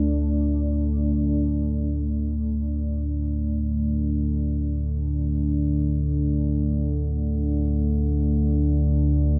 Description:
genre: dark ambient drone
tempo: free time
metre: none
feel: none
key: unclear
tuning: A4 = 440 Hz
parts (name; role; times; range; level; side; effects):
- deep dark ambient pad; sustained chords; 0.0-9.4 s; A3 to D5; -28 LUFS; equal; chorus, built-in reverb
- deep rumbling drone; drone; 0.0-9.4 s; D2 to D3; -25 LUFS; equal; built-in reverb
room: light reverb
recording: none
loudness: -24 LUFS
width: mono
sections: 0.0-1.1 A section; 1.1-9.4 B section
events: none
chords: 0.0 D5

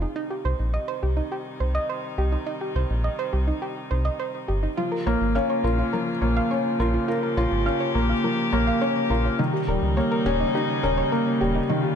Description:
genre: piano and strings electronica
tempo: 104 BPM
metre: 4/4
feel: straight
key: unclear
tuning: A4 = 437 Hz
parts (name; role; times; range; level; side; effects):
- dark string quartet; sustained chords; 0.0-12.0 s; C3 to G4; -31 LUFS; left 1 dB; none
- soft round pluck; arpeggios; 0.0-11.9 s; Eb4 to F5; -29 LUFS; right 3 dB; chorus, digital delay
- round analog bass; bass; 0.0-11.6 s; Eb1 to Db2; -24 LUFS; equal; none
- felt-muted upright piano; riff; 4.8-12.0 s; Eb3 to Bb4; -23 LUFS; left 2 dB; digital delay
room: light reverb, small room ambience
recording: none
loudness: -22 LUFS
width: side -8 dB against mid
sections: 0.0-12.0 A section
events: fade-in on string quartet 0.0-12.0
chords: 0.2 Cm; 4.8 Bbm; 9.4 Eb7

